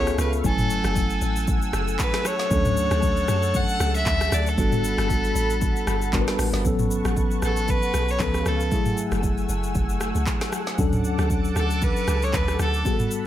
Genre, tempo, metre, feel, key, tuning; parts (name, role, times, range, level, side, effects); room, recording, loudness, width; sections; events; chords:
amapiano; 116 BPM; 4/4; swing 55% on 16ths; A4 = 438 Hz
rich fiddle; melody; 0.0-13.1 s; A4 to F#5; -27 LUFS; left 1 dB; tape echo
mellow tine electric piano; accompaniment; 0.0-13.3 s; E#3 to G#5; -27 LUFS; left 2 dB; medium stereo tremolo
lush unison pad; sustained chords; 0.0-13.3 s; A3 to E6; -32 LUFS; equal; chorus, phaser, sidechain pumping
deep log drum bass; bass; 0.0-12.8 s; F#1 to F#2; -25 LUFS; equal
afro-pop drum kit; drums; 0.1-13.2 s; handclaps, hi-hat, kick drum, rim click, shaker, snare drum, toms; -26 LUFS; equal
little or no reverb; -20 LUFS; side -12 dB against mid
0.0-6.6 A section; 6.6-13.3 B section
drop 0.0-6.6
0.4 F#m9; 2.5 Dmaj7; 4.6 Gmaj9; 6.6 A69; 8.2 C#7b13; 8.7 F#m9; 10.8 Dmaj7